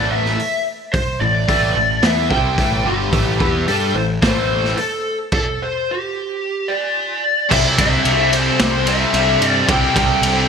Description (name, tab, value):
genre	hard rock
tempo	110 BPM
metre	4/4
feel	straight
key	A minor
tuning	A4 = 440 Hz
part	lead guitar through a small cranked amp	melody	0.0-10.5 s	G4 to G5	-19 LUFS	left 2 dB	overdrive, wide subtle chorus
part	crunchy overdriven guitar	riff	0.0-10.5 s	G2 to G4	-24 LUFS	right 9 dB	analog chorus
part	overdriven electric guitar	riff	0.0-10.5 s	G2 to G4	-24 LUFS	left 8 dB	phaser
part	fuzz picked electric bass	bass	0.0-10.4 s	G1 to G2	-22 LUFS	right 1 dB	overdrive
part	raw garage drum kit	drums	0.3-10.4 s	crash cymbal, hi-hat, kick drum, ride cymbal, snare drum	-19 LUFS	right 1 dB	none
part	high-gain distorted guitar	riff	7.5-10.5 s	C3 to C4	-22 LUFS	right 1 dB	distortion
room	moderate lush hall reverb, RT60 1.6 s, studio reverb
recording	bright 1980s-style digital production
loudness	-15 LUFS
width	side -6 dB against mid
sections	0.0-7.5 A section; 7.5-10.5 B section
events	stop 5.3-7.5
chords	0.0 Am; 6.1 N.C.; 7.5 C